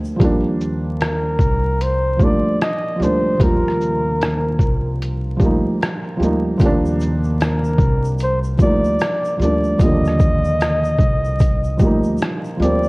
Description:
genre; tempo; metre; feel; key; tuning
lo-fi hip hop; 75 BPM; 4/4; swing 63% on 16ths; Eb major; A4 = 439 Hz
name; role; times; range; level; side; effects
felt-muted upright piano; accompaniment; 0.0-12.9 s; D3 to F4; -21 LUFS; right 1 dB; cassette tape, low-pass filter
upright bass; bass; 0.0-12.9 s; C2 to Eb2; -20 LUFS; equal; none
tube shaker; percussion; 0.0-0.2, 6.6-12.9 s; none; -49 LUFS; left 2 dB; none
trip hop sampler-style drum kit; drums; 0.2-12.8 s; hi-hat, kick drum, rim click, shaker; -18 LUFS; equal; none
mellow flugelhorn; melody; 1.0-12.9 s; Bb4 to Eb5; -22 LUFS; equal; low-pass filter
room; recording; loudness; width
light reverb, small room reverb; worn, warbling old tape, cassette tape, vinyl crackle, warbly pitch drift; -15 LUFS; side -24 dB against mid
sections
0.2-12.9 A section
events
none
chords
0.2 Ebmaj9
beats
| 0.20 1.00 1.80 2.60 | 3.40 4.20 5.00 5.80 | 6.60 7.40 8.20 9.00 | 9.80 10.60 11.40 12.20

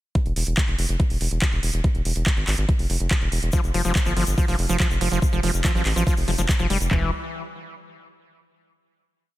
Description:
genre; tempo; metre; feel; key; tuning
psychedelic trance; 142 BPM; 4/4; straight; unclear; A4 = 440 Hz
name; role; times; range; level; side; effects
garage drum kit; drums; 0.2-7.0 s; handclaps, kick drum, toms; -21 LUFS; equal; overdrive, small room reverb
garage drum kit; drums; 0.2-6.9 s; handclaps, hi-hat; -28 LUFS; right 1 dB; overdrive, small room reverb
round analog bass; bass; 0.3-7.1 s; E1 to A1; -24 LUFS; equal; none
screaming distorted acid line; riff; 3.5-7.1 s; E3 to G3; -26 LUFS; moving between left 5 dB and right 4 dB; distortion, chorus, auto-pan, sidechain pumping, ping-pong delay
tube shaker; percussion; 3.5-6.9 s; none; -35 LUFS; left 4 dB; none
room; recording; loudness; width
little or no reverb; dense, heavily limited modern master; -20 LUFS; side -16 dB against mid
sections
0.2-6.9 groove; 6.9-8.6 final chord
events
none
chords
none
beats
| 0.15 0.57 1.00 1.42 | 1.84 2.26 2.69 3.11 | 3.53 3.96 4.38 4.80 | 5.22 5.64 6.07 6.49 | 6.91

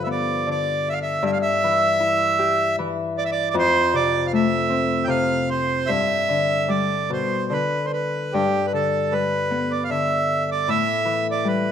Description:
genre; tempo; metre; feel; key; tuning
celtic folk, Celtic slow air; 77 BPM; 3/4; rubato; unclear; A4 = 441 Hz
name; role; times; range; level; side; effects
accordion; melody; 0.0-11.7 s; G4 to G5; -21 LUFS; right 3 dB; none
Celtic harp; accompaniment; 0.0-11.7 s; F2 to G4; -23 LUFS; left 4 dB; none
room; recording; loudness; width
moderate recital hall reverb, RT60 1.3 s; minimal, uncompressed stereo recording; -19 LUFS; side -8 dB against mid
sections
0.0-11.7 A section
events
none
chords
0.0 G7; 1.2 Em7/G; 3.5 F; 5.9 G; 10.7 A7(no3)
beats
0.47 | 1.24 2.00 2.78 | 3.54 4.31 5.09 | 5.88 6.69 7.50 | 8.32 9.11 9.90 | 10.67 11.44

